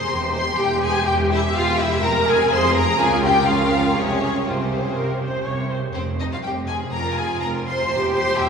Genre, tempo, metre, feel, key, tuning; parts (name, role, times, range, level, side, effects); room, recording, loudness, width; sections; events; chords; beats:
quick classical-period movement for string orchestra; 123 BPM; 4/4; straight; F minor; A4 = 440 Hz
rich studio violin section; melody; 0.0-8.5 s; C5 to C6; -23 LUFS; left 3 dB
bright studio violin section; second line; 0.0-8.5 s; C4 to C5; -25 LUFS; equal
rich studio viola section; accompaniment; 0.0-8.5 s; F4 to E5; -24 LUFS; right 2 dB
rich studio cello section; bass; 0.0-8.5 s; E2 to Db3; -26 LUFS; right 2 dB
warm studio double bass section; bass; 0.0-8.5 s; E1 to Db2; -27 LUFS; right 1 dB
wet cathedral reverb, RT60 6.3 s; recorded in a church or concert hall, small room ambience; -18 LUFS; side -6 dB against mid
0.0-8.5 A section
0.1 Abmaj7#5/E; 2.0 Fm; 3.0 Bbm/Db; 4.0 Fm/C (rootless); 5.0 Bbmadd9/C; 5.9 Fmadd11; 7.9 C/E
| 0.10 0.59 1.07 1.55 | 2.04 2.51 2.99 3.48 | 3.96 4.46 4.95 5.45 | 5.94 6.43 6.92 7.41 | 7.89 8.38